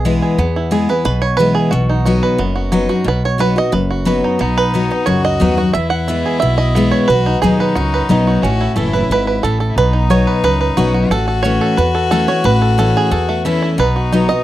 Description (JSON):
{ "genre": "bluegrass", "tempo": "179 BPM", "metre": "4/4", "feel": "straight", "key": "B mixolydian", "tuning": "A4 = 440 Hz", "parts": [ { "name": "bluegrass banjo", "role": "melody", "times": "0.0-14.4 s", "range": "F#3 to F#5", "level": "-18 LUFS", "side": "right 5 dB", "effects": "none" }, { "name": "picked steel-string acoustic guitar", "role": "accompaniment", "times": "0.0-14.4 s", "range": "E2 to F#4", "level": "-16 LUFS", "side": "left 2 dB", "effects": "none" }, { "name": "upright bass", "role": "bass", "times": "0.0-14.3 s", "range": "F#1 to E2", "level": "-18 LUFS", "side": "equal", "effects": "none" }, { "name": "rich fiddle", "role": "second line", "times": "4.4-14.4 s", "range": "D#4 to F#4", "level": "-21 LUFS", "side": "left 5 dB", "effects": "none" } ], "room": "little or no reverb", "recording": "dry, close 1970s-style studio recording", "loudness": "-12 LUFS", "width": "side -14 dB against mid", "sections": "0.0-4.4 A section; 4.4-14.4 A section", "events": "five-string banjo solo 0.0-14.4", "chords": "0.0 E; 1.7 B; 5.7 E; 7.1 B; 8.4 A; 9.8 B; 11.1 A; 13.8 B", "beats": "0.05 | 0.38 0.72 1.05 1.39 | 1.72 2.06 2.39 2.73 | 3.06 3.40 3.73 4.07 | 4.41 4.74 5.08 5.41 | 5.75 6.08 6.42 6.75 | 7.09 7.42 7.76 8.09 | 8.43 8.76 9.10 9.43 | 9.77 10.10 10.44 10.77 | 11.11 11.44 11.78 12.11 | 12.45 12.78 13.12 13.45 | 13.79 14.12" }